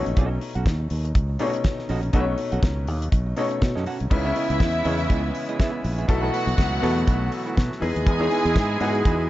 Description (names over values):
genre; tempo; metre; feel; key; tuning
disco; 122 BPM; 4/4; swing 56% on 16ths; unclear; A4 = 440 Hz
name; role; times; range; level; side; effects
clear baby grand piano; accompaniment; 0.0-9.3 s; B2 to C#5; -27 LUFS; left 3 dB; none
semi-hollow electric guitar; accompaniment; 0.0-9.3 s; A3 to F#5; -32 LUFS; right 4 dB; none
fingered electric bass; bass; 0.0-9.3 s; A#1 to B2; -25 LUFS; equal; none
damped 70s drum kit; drums; 0.1-9.2 s; crash cymbal, hi-hat, kick drum, snare drum; -22 LUFS; equal; none
clear studio string section; second line; 4.1-9.3 s; E4 to G#5; -28 LUFS; equal; none
accordion; sustained chords; 4.1-9.3 s; C#3 to D#5; -31 LUFS; right 2 dB; none
warm horn section; stabs; 8.1-9.3 s; G#3 to G#4; -28 LUFS; right 4 dB; slapback echo
room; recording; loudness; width
studio reverb; dark, warm production, nothing above 7.7 kHz; -20 LUFS; side -15 dB against mid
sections
0.0-4.1 A section; 4.1-9.3 B section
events
none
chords
0.0 B9; 4.1 C#m9; 6.1 B7sus4; 7.8 Emaj7